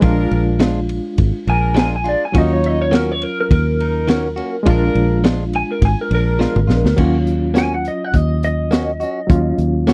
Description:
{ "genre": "straight-eighth soul blues", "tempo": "104 BPM", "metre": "4/4", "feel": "swing 55% on 16ths", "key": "Eb minor", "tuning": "A4 = 440 Hz", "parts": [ { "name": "overdriven reed electric piano", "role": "accompaniment", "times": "0.0-9.9 s", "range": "Gb3 to F4", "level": "-24 LUFS", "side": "equal", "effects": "fast tremolo" }, { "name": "warm horn section", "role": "sustained chords", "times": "0.0-6.6 s", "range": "D4 to Db5", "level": "-28 LUFS", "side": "equal", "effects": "none" }, { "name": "direct-recorded clean electric guitar", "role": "stabs", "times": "0.0-9.9 s", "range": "Eb3 to Gb4", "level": "-25 LUFS", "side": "equal", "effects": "none" }, { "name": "fingered electric bass", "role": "bass", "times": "0.0-9.9 s", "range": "Ab1 to Eb2", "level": "-20 LUFS", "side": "equal", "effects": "none" }, { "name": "crunchy breakbeat drum kit", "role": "drums", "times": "0.0-9.9 s", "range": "crash cymbal, hi-hat, kick drum, ride cymbal, snare drum, toms", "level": "-19 LUFS", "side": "equal", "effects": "none" }, { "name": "electric guitar through a small old amp", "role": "melody", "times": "1.5-9.6 s", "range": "Bb4 to Ab5", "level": "-24 LUFS", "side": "equal", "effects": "analog chorus" } ], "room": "little or no reverb", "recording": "dry, close 1970s-style studio recording", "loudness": "-17 LUFS", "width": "mono", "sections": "0.0-7.0 A section; 7.0-9.9 B section", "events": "clean electric guitar solo 0.0-7.0; drum fill 6.4-7.0", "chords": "0.0 Bb7; 2.3 Ebm7; 4.7 Bb7; 7.0 Ebm7" }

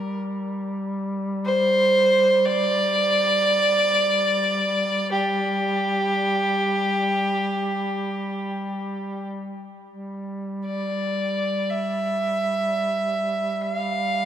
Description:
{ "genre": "caucasian folk, Caucasian lament", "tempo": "free time", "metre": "none", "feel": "none", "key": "unclear", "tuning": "A4 = 440 Hz", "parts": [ { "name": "rich fiddle", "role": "melody", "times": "0.0-14.3 s", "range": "G4 to F5", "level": "-21 LUFS", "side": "right 1 dB", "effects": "none" }, { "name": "mellow duduk", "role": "drone", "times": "0.0-14.3 s", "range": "G3", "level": "-28 LUFS", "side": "left 1 dB", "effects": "none" } ], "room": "wet cathedral reverb, RT60 6.0 s", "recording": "none", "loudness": "-20 LUFS", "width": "side -10 dB against mid", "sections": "0.0-9.9 A section; 9.9-14.3 A section", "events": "none", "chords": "none" }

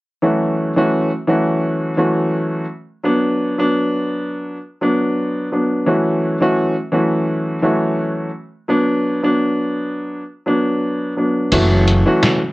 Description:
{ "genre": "hip hop, boom-bap hip-hop", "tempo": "85 BPM", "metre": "4/4", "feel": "swing 55% on 16ths", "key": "F# minor", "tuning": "A4 = 436 Hz", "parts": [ { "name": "warm upright piano", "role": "accompaniment", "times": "0.2-12.4 s", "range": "E3 to F#4", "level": "-16 LUFS", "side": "equal", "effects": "high-pass filter, low-pass filter" }, { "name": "upright bass", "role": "bass", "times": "11.5-12.0 s", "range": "F#1", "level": "-14 LUFS", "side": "equal", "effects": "none" }, { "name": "trip hop sampler-style drum kit", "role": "drums", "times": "11.5-12.4 s", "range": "crash cymbal, hi-hat, snare drum", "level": "-19 LUFS", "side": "equal", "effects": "vintage 12-bit sampler grit" } ], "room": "moderate studio reverb, RT60 0.6 s", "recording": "worn, warbling old tape, cassette tape, warbly pitch drift", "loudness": "-15 LUFS", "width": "side -20 dB against mid", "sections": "0.2-11.5 A section; 11.5-12.5 B section", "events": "kick muted 11.5-12.5", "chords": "0.2 F#m7; 3.0 Bm; 5.9 F#m7; 8.7 Bm; 11.5 F#m7" }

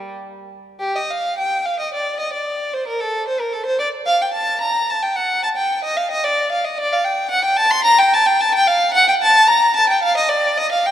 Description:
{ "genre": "classical, baroque-style suite movement for unaccompanied violin", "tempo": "110 BPM", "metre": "3/4", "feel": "rubato", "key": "G minor", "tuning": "A4 = 439 Hz", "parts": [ { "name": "rich violin", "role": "solo", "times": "0.0-10.9 s", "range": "G3 to C6", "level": "-15 LUFS", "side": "equal", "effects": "none" } ], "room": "wet church reverb, RT60 2.7 s", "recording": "none", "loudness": "-15 LUFS", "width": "side -11 dB against mid", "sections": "0.8-10.9 A section", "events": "none", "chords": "none" }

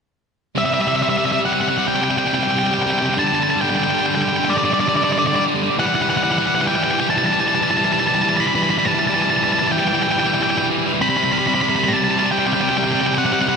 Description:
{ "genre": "rock", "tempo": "46 BPM (dotted quarters)", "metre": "6/8", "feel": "straight", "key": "unclear", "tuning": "A4 = 440 Hz", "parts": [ { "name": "octave-fuzz lead guitar", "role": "melody", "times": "0.6-13.6 s", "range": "D5 to B5", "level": "-19 LUFS", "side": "equal", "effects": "distortion, digital delay" }, { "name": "distorted electric guitar", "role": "riff", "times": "0.6-13.6 s", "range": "C3 to G3", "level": "-18 LUFS", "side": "equal", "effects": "distortion" } ], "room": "moderate huge ambient reverb, RT60 4.0 s", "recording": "none", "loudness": "-16 LUFS", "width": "side -6 dB against mid", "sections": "0.6-13.6 A section", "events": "build-up 0.6-13.6", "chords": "0.6 C; 3.2 Dsus4; 5.8 Em; 11.0 C5" }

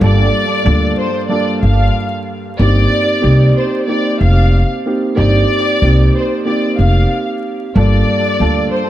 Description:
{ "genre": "hip hop, boom-bap hip-hop", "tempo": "93 BPM", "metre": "4/4", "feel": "swing 60% on 16ths", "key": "unclear", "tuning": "A4 = 439 Hz", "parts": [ { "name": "dark studio violin section", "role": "melody", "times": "0.0-8.9 s", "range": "C5 to F5", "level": "-18 LUFS", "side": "left 1 dB", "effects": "high-pass filter, low-pass filter, tape echo" }, { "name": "dark grand piano", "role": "accompaniment", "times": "0.0-8.9 s", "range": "G2 to A4", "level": "-17 LUFS", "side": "right 1 dB", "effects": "high-pass filter, low-pass filter, tape echo" }, { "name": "upright bass", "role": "bass", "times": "0.0-8.7 s", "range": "F1 to D2", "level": "-12 LUFS", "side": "equal", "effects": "none" } ], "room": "small room ambience", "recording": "echo-heavy mix, vinyl crackle", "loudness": "-11 LUFS", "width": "side -13 dB against mid", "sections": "0.0-8.9 A section", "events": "none", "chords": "0.0 Gm7; 2.6 F7sus4; 7.8 Gm7" }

